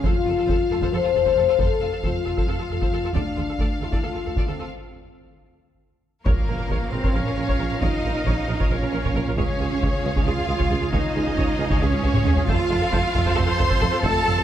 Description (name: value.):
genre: cinematic, epic orchestral film score.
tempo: 270 BPM (eighths).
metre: 7/8.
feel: straight.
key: Bb minor.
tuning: A4 = 440 Hz.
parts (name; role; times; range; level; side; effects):
clear symphonic violin section; melody; 0.0-14.4 s; F5; -35 LUFS; left 2 dB; none.
warm symphonic violin section; second line; 0.0-14.4 s; F4 to C6; -31 LUFS; left 2 dB; none.
mellow French horn section; sustained chords; 0.0-14.2 s; Ab3 to C5; -26 LUFS; left 7 dB; none.
rich symphonic double bass section; bass; 0.0-14.4 s; F1 to F2; -27 LUFS; right 3 dB; none.
warm symphonic cello section; bass; 0.0-14.4 s; D2 to C5; -28 LUFS; right 2 dB; none.
taiko ensemble; drums; 0.0-14.4 s; none; -25 LUFS; equal; none.
warm symphonic viola section; accompaniment; 0.1-14.4 s; F4 to Db5; -32 LUFS; right 1 dB; none.
warm woodwind section; sustained chords; 6.3-14.4 s; C4 to F5; -33 LUFS; left 2 dB; none.
warm tuba; bass; 6.3-14.3 s; F1 to Db2; -30 LUFS; right 3 dB; none.
impact; sound effects; 6.3-7.8 s; none; -33 LUFS; equal; none.
room: moderate concert hall reverb, RT60 2.0 s.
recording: none.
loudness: -20 LUFS.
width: side -10 dB against mid.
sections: 0.0-6.3 A section; 6.3-14.4 A section.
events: break 4.7-6.3; drum fill 5.9-6.3, 12.2-12.5; impact 6.3-7.8.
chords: 0.0 F; 3.2 Dm; 4.7 N.C.; 6.3 Bbm; 9.4 Db; 12.5 F.